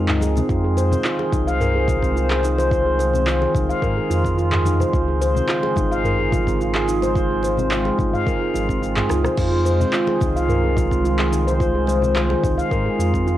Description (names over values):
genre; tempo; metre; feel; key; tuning
organic downtempo; 108 BPM; 4/4; straight; F minor; A4 = 440 Hz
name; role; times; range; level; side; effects
warbly tape-like pad; sustained chords; 0.0-13.4 s; Db3 to C5; -25 LUFS; left 1 dB; chorus, built-in reverb, sidechain pumping
handpan; arpeggios; 0.0-13.4 s; C4 to F5; -21 LUFS; equal; low-pass filter, analog delay
warm sub bass; bass; 0.0-13.4 s; Ab1 to Ab2; -22 LUFS; equal; sidechain pumping
afro-pop drum kit; drums; 0.1-13.4 s; crash cymbal, handclaps, rim click, shaker, toms; -26 LUFS; equal; none
congas; percussion; 0.1-12.6 s; none; -32 LUFS; left 5 dB; none
electronic kick drum; drums; 0.5-13.2 s; none; -24 LUFS; equal; none
room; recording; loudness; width
moderate studio reverb, RT60 0.6 s; home recording on cassette; -17 LUFS; side -13 dB against mid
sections
0.0-13.4 A section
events
drum fill 9.1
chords
0.5 Fm7; 4.9 Db; 9.4 Fm7